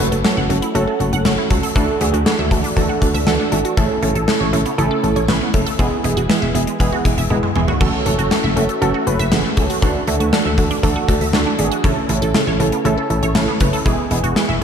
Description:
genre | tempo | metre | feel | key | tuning
synth-pop | 119 BPM | 4/4 | straight | unclear | A4 = 440 Hz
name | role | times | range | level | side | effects
warbly dusty pluck | accompaniment | 0.0-14.6 s | G#3 to B4 | -19 LUFS | right 2 dB | chorus
resonant blip pluck | arpeggios | 0.0-14.6 s | C#3 to F#5 | -23 LUFS | right 4 dB | phaser, diffuse ambient delay
solid FM bass | bass | 0.0-14.6 s | E1 to D2 | -20 LUFS | left 1 dB | none
gated 80s drum kit | drums | 0.1-14.5 s | crash cymbal, hi-hat, kick drum, snare drum, toms | -19 LUFS | left 1 dB | none
room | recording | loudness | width
moderate plate reverb, RT60 2.8 s | dreamy mix soaked in reverb | -15 LUFS | side -7 dB against mid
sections
0.0-14.6 A section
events
drum fill 7.3-7.8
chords
0.0 F#m7; 1.8 Dadd9; 3.8 Aadd9; 5.8 Eadd9; 7.8 F#m7; 9.8 Dadd9; 11.8 Aadd9; 13.9 Eadd9

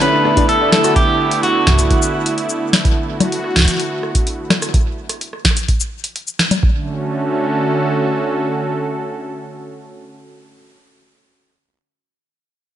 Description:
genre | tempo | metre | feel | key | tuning
IDM | 127 BPM | 4/4 | straight | D major | A4 = 440 Hz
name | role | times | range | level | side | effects
electric guitar at the edge of break-up | melody | 0.0-2.3 s | F#4 to B4 | -17 LUFS | right 1 dB | digital delay
warm analog pad | sustained chords | 0.0-10.4 s | D3 to A4 | -19 LUFS | right 2 dB | chorus, vintage 12-bit sampler grit
felt-muted upright piano | arpeggios | 0.0-0.9 s | A3 to D5 | -21 LUFS | left 4 dB | vintage 12-bit sampler grit, tape echo
booming analog drum machine | drums | 0.0-6.6 s | cabasa, congas, hi-hat, rim click, snare drum | -18 LUFS | left 1 dB | ping-pong delay
electronic kick drum | drums | 0.4-6.7 s | none | -16 LUFS | equal | none
room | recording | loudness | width
light reverb | nothing above 10.9 kHz | -14 LUFS | side -11 dB against mid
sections
0.0-6.6 A section; 6.6-10.4 B section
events
band accent 6.4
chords
0.0 A9sus4; 1.7 E9sus4; 6.6 Dmaj7

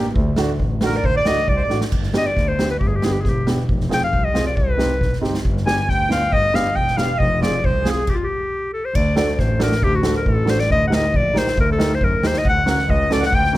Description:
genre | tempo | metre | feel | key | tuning
klezmer | 137 BPM | 2/4 | straight | G phrygian dominant, D phrygian dominant from 9.0 s | A4 = 440 Hz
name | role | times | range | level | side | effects
warm upright piano | accompaniment | 0.0-13.6 s | A3 to C5 | -25 LUFS | right 2 dB | none
warm double bass | bass | 0.2-13.6 s | E1 to F#2 | -22 LUFS | equal | none
street-band drum kit | drums | 0.2-13.6 s | crash cymbal, kick drum, snare drum | -22 LUFS | equal | none
accordion | second line | 0.8-1.8, 5.7-8.0, 12.5-13.5 s | Ab4 to Ab5 | -26 LUFS | right 6 dB | none
bright clarinet | melody | 0.9-13.6 s | F4 to Ab5 | -21 LUFS | left 2 dB | none
room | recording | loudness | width
light reverb | close, detailed microphones | -16 LUFS | side -16 dB against mid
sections
0.0-1.9 A section; 1.9-9.0 B section; 9.0-13.6 C section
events
drum fill 1.7, 5.2; stop 8.1-9.0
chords
0.2 D; 1.9 G; 3.7 Fm; 4.6 Cm; 5.4 G; 7.2 Fm; 8.1 N.C.; 9.0 D; 10.7 Eb; 12.4 F#5

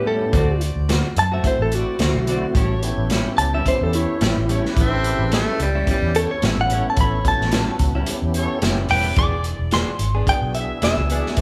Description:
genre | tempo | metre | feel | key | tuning
straight-eighth soul blues | 109 BPM | 4/4 | swing 55% on 16ths | A mixolydian | A4 = 440 Hz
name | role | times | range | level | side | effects
direct-recorded clean electric guitar | melody | 0.0-11.4 s | E4 to D6 | -25 LUFS | equal | none
tonewheel organ | accompaniment | 0.0-11.4 s | A2 to B4 | -30 LUFS | equal | slow rotary speaker, overdrive, chorus vibrato
direct-recorded clean electric guitar | stabs | 0.1-11.4 s | A2 to G#4 | -30 LUFS | equal | spring reverb
clear horn section | sustained chords | 0.3-11.4 s | E4 to E5 | -34 LUFS | equal | none
vintage muted fingered electric bass | bass | 0.3-11.4 s | E1 to F#2 | -25 LUFS | equal | none
crunchy breakbeat drum kit | drums | 0.3-11.4 s | hi-hat, kick drum, snare drum | -25 LUFS | equal | none
edgy tenor saxophone | second line | 4.8-6.2 s | G3 to C4 | -26 LUFS | equal | none
room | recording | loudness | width
moderate large studio reverb, RT60 1.3 s | band playing live in one room | -20 LUFS | mono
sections
0.0-11.4 A section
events
none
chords
0.3 D7; 2.6 A7; 9.2 E7

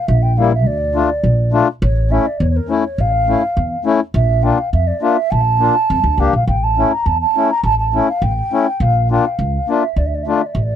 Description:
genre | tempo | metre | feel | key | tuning
klezmer | 103 BPM | 2/4 | straight | unclear | A4 = 440 Hz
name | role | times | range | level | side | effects
mellow hollow wooden flute | melody | 0.0-10.8 s | Bb4 to Bb5 | -18 LUFS | right 3 dB | slapback echo
upright bass | bass | 0.1-10.7 s | A1 to F2 | -16 LUFS | equal | none
mellow accordion | accompaniment | 0.4-10.4 s | G3 to G4 | -15 LUFS | left 6 dB | none
room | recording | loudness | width
little or no reverb | dry, close 1970s-style studio recording | -13 LUFS | side -9 dB against mid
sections
0.0-1.8 A section; 1.8-10.8 B section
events
none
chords
0.0 Edim; 0.7 Dm; 1.8 A; 4.1 Bb; 6.5 A; 8.8 Bb; 10.0 Dm

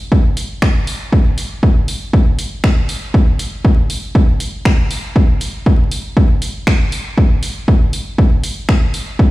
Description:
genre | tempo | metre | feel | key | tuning
techno | 119 BPM | 4/4 | swing 55% on 16ths | none | none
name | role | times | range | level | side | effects
electronic kick drum | drums | 0.1-9.3 s | none | -13 LUFS | equal | none
punchy analog drum machine | drums | 0.4-9.1 s | finger snaps, hi-hat | -24 LUFS | equal | none
room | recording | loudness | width
little or no reverb | played on a big sound system in a bare room, large studio reverb, vinyl crackle | -12 LUFS | side -18 dB against mid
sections
0.0-9.3 A section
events
none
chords
none

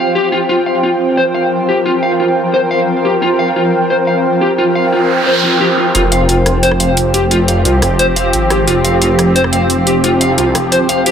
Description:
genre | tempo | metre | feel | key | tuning
dark technical drum and bass | 176 BPM | 4/4 | straight | unclear | A4 = 442 Hz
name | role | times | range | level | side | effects
swarming drone | sustained chords | 0.0-11.1 s | F3 to Bb4 | -17 LUFS | equal | built-in reverb
electric guitar at the edge of break-up | arpeggios | 0.0-11.1 s | F4 to F5 | -16 LUFS | equal | low-pass filter, digital delay
airy breathy pad | texture | 0.0-11.1 s | F4 to G5 | -16 LUFS | equal | chorus
noise sweep | sound effects | 4.8-5.9 s | none | -17 LUFS | right 4 dB | none
phased detuned saw bass | bass | 5.9-11.1 s | F1 to C2 | -15 LUFS | equal | phaser, tube saturation
drum and bass drum kit | drums | 5.9-11.1 s | hi-hat, rim click | -17 LUFS | equal | overdrive
room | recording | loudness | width
moderate lush hall reverb, RT60 1.9 s, digital ambience | high-pass filter | -10 LUFS | side -8 dB against mid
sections
0.0-5.9 A section; 5.9-11.1 B section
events
noise sweep 4.8-5.9; build-up 5.9-11.1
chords
0.0 Fsus2

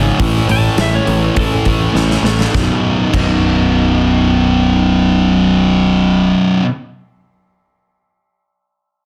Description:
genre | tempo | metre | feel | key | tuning
quiet-loud alternative rock | 102 BPM | 4/4 | straight | unclear | A4 = 440 Hz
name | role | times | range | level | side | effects
mellow electric guitar | arpeggios | 0.0-6.7 s | B1 to A4 | -22 LUFS | equal | slapback echo, plate reverb
thick fuzz guitar | riff | 0.0-6.6 s | B1 to A3 | -16 LUFS | equal | distortion
picked electric bass | bass | 0.0-6.3 s | B0 to A1 | -20 LUFS | equal | none
big rock drum kit | drums | 0.2-3.3 s | crash cymbal, hi-hat, kick drum, snare drum | -22 LUFS | equal | none
clean electric guitar | melody | 0.5-1.7 s | A4 to A5 | -23 LUFS | equal | slapback echo, plate reverb
room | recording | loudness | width
moderate large studio reverb, RT60 0.8 s, small room ambience | dense, heavily limited modern master | -13 LUFS | mono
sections
0.0-2.5 A section; 2.5-4.9 B section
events
clean electric guitar solo 0.0-2.5; drum fill 2.0-2.5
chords
0.2 A; 2.5 B

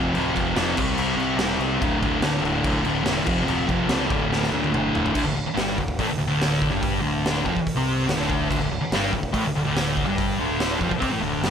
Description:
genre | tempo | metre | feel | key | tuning
garage rock duo or trio | 143 BPM | 4/4 | straight | unclear | A4 = 440 Hz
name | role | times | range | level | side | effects
thick fuzz guitar | riff | 0.0-11.5 s | D2 to C4 | -22 LUFS | equal | distortion
growling picked electric bass | bass | 0.0-11.5 s | D1 to D2 | -31 LUFS | equal | overdrive
raw garage drum kit | drums | 0.1-11.5 s | crash cymbal, hi-hat, kick drum, snare drum, toms | -26 LUFS | equal | none
room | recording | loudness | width
light reverb | none | -20 LUFS | side -7 dB against mid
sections
0.0-5.2 A section; 5.2-11.5 B section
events
drum fill 4.3-5.2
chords
0.0 F5; 0.8 C; 1.8 D5; 3.3 F5; 4.1 D5

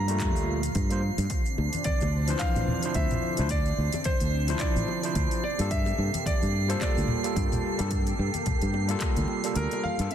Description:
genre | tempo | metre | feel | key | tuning
sunset chillout | 109 BPM | 4/4 | swing 57% on 16ths | unclear | A4 = 440 Hz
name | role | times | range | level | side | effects
bright concert grand piano | melody | 0.0-10.1 s | Bb4 to Bb5 | -34 LUFS | right 1 dB | vintage 12-bit sampler grit, ping-pong delay
lush unison pad | sustained chords | 0.0-10.1 s | Bb2 to A4 | -36 LUFS | right 1 dB | chorus
fretless electric bass | bass | 0.0-10.1 s | A1 to G2 | -27 LUFS | equal | none
drifting glass-harmonics texture | texture | 0.0-10.1 s | C7 | -36 LUFS | right 7 dB | chorus, built-in reverb
overdriven tine electric piano | accompaniment | 0.1-10.1 s | E3 to C5 | -32 LUFS | moving between left 6 dB and right 3 dB | auto-pan, ping-pong delay
smooth R&B drum kit | drums | 0.1-10.1 s | handclaps, hi-hat, shaker | -37 LUFS | left 2 dB | none
electronic kick drum | drums | 0.2-9.1 s | none | -30 LUFS | equal | overdrive
bongos and congas | percussion | 1.6-10.0 s | none | -34 LUFS | left 2 dB | none
kalimba | arpeggios | 10.1 s | C4 | -36 LUFS | right 4 dB | low-pass filter
room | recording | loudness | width
light reverb | dense, heavily limited modern master | -24 LUFS | side -10 dB against mid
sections
0.0-10.1 A section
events
kick drops out 9.6-10.1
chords
0.0 Gm9; 1.3 Dm9; 5.4 Gm9

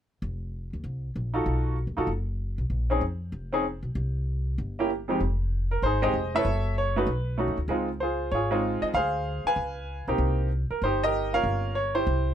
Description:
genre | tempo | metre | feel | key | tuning
jazz piano trio | 193 BPM | 4/4 | swing 63% on 8ths | F minor | A4 = 441 Hz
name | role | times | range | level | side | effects
upright bass | bass | 0.2-12.3 s | F1 to F2 | -29 LUFS | equal | none
clear baby grand piano | melody | 1.3-12.3 s | F2 to Ab5 | -26 LUFS | right 1 dB | none
room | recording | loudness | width
little or no reverb | close, detailed microphones | -25 LUFS | side -10 dB against mid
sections
0.2-5.2 A section; 5.2-12.3 B section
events
none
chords
0.2 F5; 1.5 B7#11; 2.7 Bb5; 4.0 C5; 5.2 Fm7; 6.4 Gbm7; 7.1 B9; 7.7 Dbmaj7; 8.9 Dm7b5; 9.6 Db7; 10.2 Cm7; 11.4 Gm7b5

